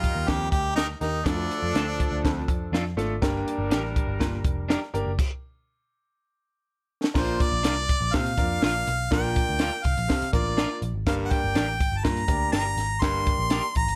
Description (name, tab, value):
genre	uptempo 1960s-style soul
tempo	122 BPM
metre	4/4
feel	straight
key	Bb major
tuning	A4 = 440 Hz
part	clear harmonica	melody	0.0-2.2, 7.2-14.0 s	D4 to C6	-30 LUFS	equal	slapback echo
part	warm horn section	second line	0.0-4.9 s	F3 to Bb4	-37 LUFS	equal	none
part	vintage muted picked electric bass	bass	0.0-14.0 s	F1 to Bb2	-32 LUFS	equal	none
part	compact cocktail drum kit	drums	0.0-14.0 s	crash cymbal, hi-hat, kick drum, snare drum	-28 LUFS	equal	none
part	breathy baritone saxophone	riff	0.3-13.4 s	D2 to C3	-35 LUFS	equal	none
part	electric guitar at the edge of break-up	stabs	0.8-13.6 s	D4 to Bb4	-34 LUFS	equal	lush chorus
part	clear grand piano	accompaniment	1.0-13.7 s	A3 to Bb4	-34 LUFS	equal	none
room	light reverb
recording	none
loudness	-25 LUFS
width	mono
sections	0.0-7.1 A section; 7.1-14.0 B section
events	stop 5.2-7.1; drum fill 6.2-7.1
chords	0.0 Eb; 1.3 Dm; 3.2 Gm; 5.2 N.C.; 7.1 Bb; 11.1 Gm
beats	0.28 0.77 | 1.26 1.75 2.24 2.73 | 3.22 3.71 4.20 4.69 | 5.18 5.67 6.17 6.66 | 7.15 7.64 8.13 8.62 | 9.11 9.60 10.09 10.58 | 11.07 11.56 12.05 12.54 | 13.03 13.52